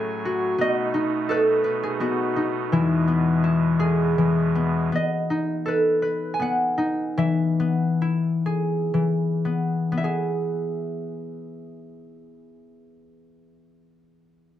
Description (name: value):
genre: children's music, lullaby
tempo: 54-85 BPM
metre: 3/4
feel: rubato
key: E major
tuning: A4 = 440 Hz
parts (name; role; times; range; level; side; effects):
- concert harp; melody; 0.0-13.9 s; E3 to G#5; -21 LUFS; left 1 dB; none
- pipe organ, soft reed; sustained chords; 0.0-4.9 s; E2 to G#5; -29 LUFS; right 4 dB; none
room: light reverb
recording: dark, warm production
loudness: -20 LUFS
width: side -11 dB against mid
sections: 0.0-4.9 A section; 4.9-10.0 B section; 10.0-14.6 C section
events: slowing down 4.9-10.0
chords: 0.0 F#madd9/A; 0.6 B7; 2.7 E; 4.9 B7; 7.2 E